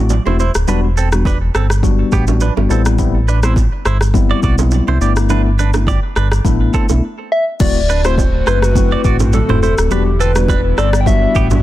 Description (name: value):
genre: afrobeats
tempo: 104 BPM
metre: 4/4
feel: swing 55% on 16ths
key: unclear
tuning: A4 = 440 Hz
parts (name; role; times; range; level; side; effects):
- tine electric piano; accompaniment; 0.0-11.6 s; G3 to F#4; -20 LUFS; moving between left 9 dB and left 1 dB; auto-pan
- sub bass with octave; bass; 0.0-11.6 s; D1 to C2; -14 LUFS; equal; none
- afro-pop drum kit; drums; 0.1-11.6 s; crash cymbal, kick drum, rim click, shaker, toms; -17 LUFS; equal; soft clipping on snare
- bongos and congas; percussion; 0.1-11.6 s; none; -24 LUFS; right 10 dB; none
- direct-recorded clean electric guitar; riff; 0.3-11.5 s; B3 to D5; -23 LUFS; right 7 dB; phaser, digital delay
- soft struck synth lead; melody; 7.3-11.6 s; G4 to G5; -18 LUFS; left 2 dB; chorus, digital delay
- airy breathy pad; sustained chords; 7.9-11.6 s; D3 to F#4; -25 LUFS; right 2 dB; chorus, sidechain pumping
room: little or no reverb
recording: dense, heavily limited modern master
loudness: -12 LUFS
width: side -14 dB against mid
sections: 0.0-7.6 A section; 7.6-11.6 B section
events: break 7.0-7.6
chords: 0.0 D7; 0.7 Em7; 2.7 Am7; 5.0 G6; 7.6 D7; 9.9 Em7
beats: 0.10 | 0.68 1.25 1.83 2.41 | 2.99 3.56 4.14 4.72 | 5.29 5.87 6.45 7.03 | 7.60 8.18 8.76 9.33 | 9.91 10.49 11.06